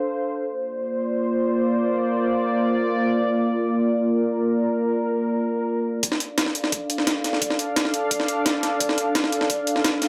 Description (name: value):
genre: dark technical drum and bass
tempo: 173 BPM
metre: 4/4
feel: straight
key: D minor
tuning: A4 = 439 Hz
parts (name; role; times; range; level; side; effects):
- sweeping resonant pad; sustained chords; 0.0-10.1 s; Bb3 to F5; -24 LUFS; equal; chorus, sidechain pumping
- breakbeat sampler-style drum kit; drums; 6.0-10.1 s; hi-hat, snare drum; -26 LUFS; equal; high-pass filter on hats, high-pass filter on snare
- electronic hi-hat; drums; 6.0-10.1 s; none; -29 LUFS; equal; overdrive
- electronic kick drum; drums; 6.0-9.9 s; none; -37 LUFS; equal; overdrive, high-pass filter on kick
room: light reverb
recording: dark, warm production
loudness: -23 LUFS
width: mono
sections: 0.0-6.0 A section; 6.0-10.1 B section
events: build-up 6.0-10.1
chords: 0.5 Bbadd9; 6.0 Dm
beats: 0.13 | 0.48 0.83 1.18 1.52 | 1.87 2.21 2.56 2.91 | 3.26 3.60 3.95 4.30 | 4.64 4.99 5.34 5.68 | 6.03 6.38 6.72 7.07 | 7.42 7.76 8.11 8.46 | 8.80 9.15 9.50 9.85